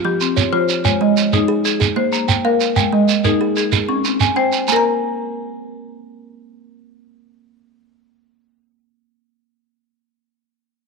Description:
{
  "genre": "southern african traditional, mbira-style interlocking cycle",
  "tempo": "125 BPM (dotted quarters)",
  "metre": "12/8",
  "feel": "straight",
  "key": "unclear",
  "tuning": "A4 = 440 Hz",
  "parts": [
    { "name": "kalimba", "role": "arpeggios", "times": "0.0-9.6 s", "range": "F3 to Bb5", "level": "-20 LUFS", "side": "right 11 dB", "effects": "none" },
    { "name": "marimba with hard mallets", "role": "arpeggios", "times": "0.0-9.6 s", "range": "Ab3 to Bb5", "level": "-19 LUFS", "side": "left 12 dB", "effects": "none" },
    { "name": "shekere", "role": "percussion", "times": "0.2-4.8 s", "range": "none", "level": "-19 LUFS", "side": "right 5 dB", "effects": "none" }
  ],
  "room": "moderate spring reverb, RT60 1.9 s, small room reverb",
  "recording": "1960s-style stereo with parts hard left and right",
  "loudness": "-14 LUFS",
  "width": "side -4 dB against mid",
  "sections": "0.0-4.7 A section; 4.7-8.5 B section",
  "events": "none",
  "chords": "0.0 F5; 0.8 Ab; 1.8 Bb5; 2.8 Ab5; 3.7 C5; 4.7 N.C.",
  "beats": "0.37 | 0.85 1.33 1.81 2.29 | 2.77 3.25 3.73 4.20 | 4.68 5.16 5.64 6.12 | 6.60 7.08 7.56 8.04"
}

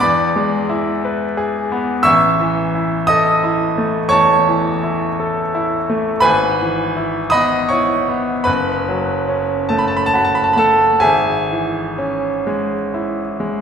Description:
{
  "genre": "classical, romantic nocturne for solo piano",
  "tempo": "42-62 BPM (dotted quarters)",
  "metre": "12/8",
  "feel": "rubato",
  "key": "unclear",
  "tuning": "A4 = 440 Hz",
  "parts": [
    { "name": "bright grand piano", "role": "solo", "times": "0.0-13.6 s", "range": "F#1 to E6", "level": "-14 LUFS", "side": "equal", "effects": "none" }
  ],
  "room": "wet concert hall reverb, RT60 2.0 s",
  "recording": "recorded in a church or concert hall",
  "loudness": "-14 LUFS",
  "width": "side -7 dB against mid",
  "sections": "0.0-13.6 A section",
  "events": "none",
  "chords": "0.0 E7; 2.1 A; 6.3 E/G#; 8.5 F#m; 11.0 C#m/G#",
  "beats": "0.04 1.04 | 2.07 3.12 4.14 5.22 | 6.27 7.34 8.47 9.70 | 11.05 12.47"
}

